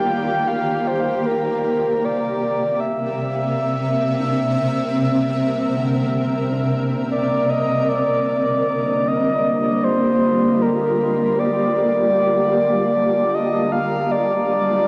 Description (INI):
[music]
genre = ambient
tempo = 77 BPM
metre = 4/4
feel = straight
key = Eb major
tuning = A4 = 440 Hz
[part]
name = breathy flute-like synth lead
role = melody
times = 0.0-14.9 s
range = Bb4 to G5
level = -22 LUFS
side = equal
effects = chorus, cassette tape
[part]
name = shimmering ambient pad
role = sustained chords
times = 0.0-14.9 s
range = C3 to B5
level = -24 LUFS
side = equal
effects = chorus, built-in reverb
[part]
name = felt-muted upright piano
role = arpeggios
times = 0.0-8.8 s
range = D3 to F5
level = -40 LUFS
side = equal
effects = none
[part]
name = overtone-sweeping drone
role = drone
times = 0.0-14.9 s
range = D3 to Bb3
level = -28 LUFS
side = equal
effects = chorus, built-in reverb
[sound]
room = wet huge ambient reverb, RT60 9.1 s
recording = worn, warbling old tape, cassette tape, warbly pitch drift, faint mains hum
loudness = -20 LUFS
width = mono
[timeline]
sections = 0.0-7.5 A section; 7.5-14.9 B section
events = filter sweep on ambient pad 7.5-14.9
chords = 0.0 Ebmaj7; 1.3 C7; 7.5 Ebmaj7; 13.7 G7